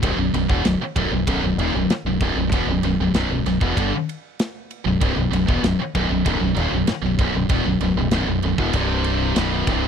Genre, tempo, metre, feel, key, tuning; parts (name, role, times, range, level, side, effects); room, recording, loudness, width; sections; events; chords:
heavy metal; 96 BPM; 4/4; straight; A4 = 435 Hz
heavy high-gain guitar; riff; 0.0-9.9 s; B1 to D3; -23 LUFS; left 12 dB; distortion
heavy high-gain guitar; riff; 0.0-9.9 s; B1 to D3; -23 LUFS; right 11 dB; distortion
growling fingered electric bass; bass; 0.0-9.9 s; B0 to G1; -24 LUFS; equal; overdrive
tight metal drum kit; drums; 0.0-9.8 s; kick drum, ride cymbal, snare drum; -23 LUFS; equal
small room ambience; dry, close 1970s-style studio recording; -18 LUFS; side -7 dB against mid
0.0-9.9 A section
0.0 B5; 8.7 C5; 9.4 B5